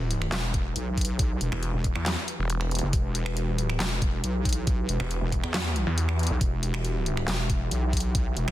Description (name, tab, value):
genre	heavy wobble dubstep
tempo	138 BPM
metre	4/4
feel	half-time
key	E minor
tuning	A4 = 440 Hz
part	supersaw chords	sustained chords	0.0-8.5 s	E3 to E5	-37 LUFS	right 1 dB	phaser, sidechain pumping, low-pass filter
part	wobble bass	bass	0.0-8.5 s	E1 to E2	-28 LUFS	equal	chorus, overdrive
part	impact	sound effects	0.0-1.2 s	none	-44 LUFS	equal	none
part	dubstep drum kit	drums	0.1-8.5 s	finger snaps, handclaps, hi-hat, snare drum	-32 LUFS	equal	soft clipping on snare
part	electronic kick drum	drums	0.5-8.2 s	none	-26 LUFS	equal	none
part	snarling distorted saw bass	bass	1.5-8.5 s	E1 to E2	-27 LUFS	equal	distortion, overdrive
room	little or no reverb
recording	dense, heavily limited modern master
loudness	-24 LUFS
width	side -14 dB against mid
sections	0.0-8.5 A section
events	impact 0.0-1.2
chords	0.0 Emadd9